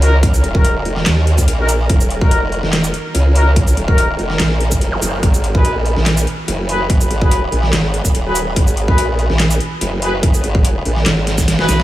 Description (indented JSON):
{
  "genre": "heavy wobble dubstep",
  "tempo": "144 BPM",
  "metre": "4/4",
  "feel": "half-time",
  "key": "unclear",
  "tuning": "A4 = 440 Hz",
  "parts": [
    { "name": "mellow brass ensemble", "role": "stabs", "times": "0.0-11.8 s", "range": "Eb4 to Cb5", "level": "-21 LUFS", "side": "left 1 dB", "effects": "tape echo" },
    { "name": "formant-sweep wobble bass", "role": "bass", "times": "0.0-11.8 s", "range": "Eb1 to Eb2", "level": "-16 LUFS", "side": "equal", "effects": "chorus, overdrive" },
    { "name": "dubstep drum kit", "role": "drums", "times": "0.0-11.8 s", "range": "handclaps, hi-hat, shaker, snare drum", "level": "-20 LUFS", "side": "equal", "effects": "overdrive" },
    { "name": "electronic kick drum", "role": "drums", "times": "0.2-11.5 s", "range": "none", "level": "-14 LUFS", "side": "equal", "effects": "overdrive" },
    { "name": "zap", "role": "sound effects", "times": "4.9-5.0 s", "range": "none", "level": "-30 LUFS", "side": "equal", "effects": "none" }
  ],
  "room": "light reverb",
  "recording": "small room ambience",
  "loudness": "-12 LUFS",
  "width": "side -15 dB against mid",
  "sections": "0.0-11.8 A section",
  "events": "drum fill 11.3-11.8",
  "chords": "0.0 Ebm; 5.2 Abm7",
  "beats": "| 0.23 0.65 1.06 1.48 | 1.90 2.31 2.73 3.15 | 3.56 3.98 4.40 4.81 | 5.23 5.65 6.06 6.48 | 6.90 7.31 7.73 8.15 | 8.56 8.98 9.40 9.81 | 10.23 10.65 11.06 11.48"
}